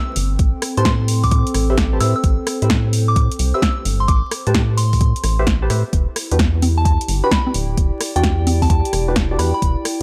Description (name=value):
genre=UK garage, two-step garage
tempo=130 BPM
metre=4/4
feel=swing 67% on 16ths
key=A minor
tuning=A4 = 438 Hz
part: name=soft synth bell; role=melody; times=0.0-9.6 s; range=G5 to E6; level=-27 LUFS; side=equal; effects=chorus, tape echo
part: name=warbly tape-like pad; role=texture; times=0.0-10.0 s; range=C4 to G5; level=-30 LUFS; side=equal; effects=chorus, built-in reverb, sidechain pumping
part: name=rubbery square bass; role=bass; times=0.2-9.8 s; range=D1 to A2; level=-20 LUFS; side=equal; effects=none
part: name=punchy analog drum machine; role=drums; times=0.2-10.0 s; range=congas, hi-hat, rim click, snare drum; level=-24 LUFS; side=equal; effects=overdrive
part: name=electronic kick drum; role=drums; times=0.4-9.7 s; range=none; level=-20 LUFS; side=equal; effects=overdrive
part: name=percussive organ stab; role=stabs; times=0.8-9.5 s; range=D4 to A5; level=-26 LUFS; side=equal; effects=lush chorus, tape echo
room=digital ambience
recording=vinyl crackle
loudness=-17 LUFS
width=mono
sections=0.0-10.0 A section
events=none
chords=0.0 Am9; 5.9 Em9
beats=| 0.39 0.85 1.31 1.78 | 2.24 2.70 3.16 3.62 | 4.08 4.55 5.01 5.47 | 5.93 6.39 6.85 7.32 | 7.78 8.24 8.70 9.16 | 9.62